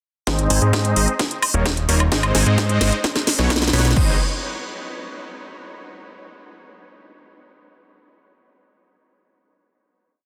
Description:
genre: EDM, festival progressive house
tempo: 130 BPM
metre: 4/4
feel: straight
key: Ab major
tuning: A4 = 440 Hz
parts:
  - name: supersaw chords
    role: riff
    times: 0.3-4.1 s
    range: F#3 to Ab5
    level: -27 LUFS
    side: equal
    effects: sidechain pumping, low-pass filter, dub echo
  - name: fat analog bass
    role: bass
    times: 0.3-4.2 s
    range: Eb1 to Ab2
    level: -21 LUFS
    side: equal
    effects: sidechain pumping
  - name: electronic kick drum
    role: drums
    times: 0.3-4.1 s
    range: none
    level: -25 LUFS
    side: equal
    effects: overdrive, high-pass filter on kick, high-pass filter on room
  - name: house drum kit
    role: drums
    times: 0.3-4.1 s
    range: crash cymbal, hi-hat, snare drum, woodblock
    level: -24 LUFS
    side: equal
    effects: overdrive
room: light reverb, digital ambience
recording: dense, heavily limited modern master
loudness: -19 LUFS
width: mono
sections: 0.3-4.0 build; 4.0-5.8 final chord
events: build-up 0.3-4.0; drum fill 0.3-4.0; filter sweep on supersaw synth 0.3-4.0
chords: 0.3 Ab; 1.2 Eb; 2.1 Ab; 3.0 B; 4.0 Ab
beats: | 0.27 0.73 1.20 1.66 | 2.12 2.58 3.04 3.50 | 3.96

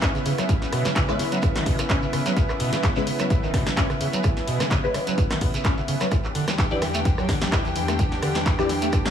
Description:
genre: acid house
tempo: 128 BPM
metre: 4/4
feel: swing 54% on 16ths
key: C# minor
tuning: A4 = 442 Hz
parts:
  - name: lush unison pad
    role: sustained chords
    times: 0.0-9.1 s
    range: E2 to G4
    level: -27 LUFS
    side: equal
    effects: chorus, sidechain pumping
  - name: overdriven acid bass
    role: riff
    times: 0.0-9.1 s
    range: B2 to E4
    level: -28 LUFS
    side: equal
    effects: distortion, wide subtle chorus, sidechain pumping, dub echo
  - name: breakbeat sampler-style drum kit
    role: drums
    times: 0.0-9.0 s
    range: hi-hat, snare drum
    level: -41 LUFS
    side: equal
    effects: none
  - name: electronic kick drum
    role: drums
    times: 0.0-9.0 s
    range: none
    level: -23 LUFS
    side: equal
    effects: none
  - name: punchy analog drum machine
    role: drums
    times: 0.0-9.1 s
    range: handclaps, hi-hat, rim click, snare drum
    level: -28 LUFS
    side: equal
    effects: none
  - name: shekere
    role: percussion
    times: 0.0-9.1 s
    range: none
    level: -34 LUFS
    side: right 5 dB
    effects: none
  - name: filtered dub chord stab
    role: stabs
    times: 1.1-8.7 s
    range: G#3 to D5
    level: -29 LUFS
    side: left 2 dB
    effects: phaser, ensemble chorus, cassette tape, dub echo
room: light reverb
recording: small room ambience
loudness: -20 LUFS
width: side -9 dB against mid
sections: 0.0-9.1 A section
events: none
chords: 0.0 C#m7; 6.1 Em7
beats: 0.02 | 0.49 0.96 1.43 1.90 | 2.37 2.83 3.30 3.77 | 4.24 4.71 5.18 5.65 | 6.12 6.58 7.05 7.52 | 7.99 8.46 8.93

